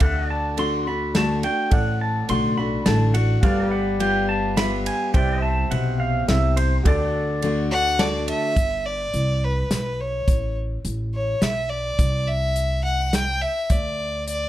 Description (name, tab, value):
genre	honky-tonk and classic country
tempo	105 BPM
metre	3/4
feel	straight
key	G major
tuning	A4 = 440 Hz
part	pedal steel guitar	second line	0.0-6.7 s	C5 to C6	-25 LUFS	right 2 dB	none
part	picked steel-string acoustic guitar	accompaniment	0.0-8.5 s	A2 to F#4	-25 LUFS	left 3 dB	none
part	pedal steel guitar	sustained chords	0.0-8.6 s	F#4 to E5	-32 LUFS	left 1 dB	none
part	upright bass	bass	0.0-14.5 s	G1 to D2	-24 LUFS	equal	none
part	natural country drum kit	drums	0.0-14.4 s	hi-hat, kick drum, ride cymbal, snare drum	-22 LUFS	equal	none
part	clear upright piano	accompaniment	1.7-8.5 s	F#4 to A5	-33 LUFS	right 5 dB	none
part	rich fiddle	melody	7.7-14.5 s	B4 to G5	-24 LUFS	equal	none
room	light reverb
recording	dark, warm production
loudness	-19 LUFS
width	side -13 dB against mid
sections	0.0-8.6 A section; 8.6-14.5 B section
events	pedal steel guitar solo 0.0-8.6; upright piano fill 7.7-8.6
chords	0.0 D; 3.4 G7; 5.1 C; 6.9 D; 8.6 G; 10.3 Aadd9; 12.0 C; 13.7 N.C.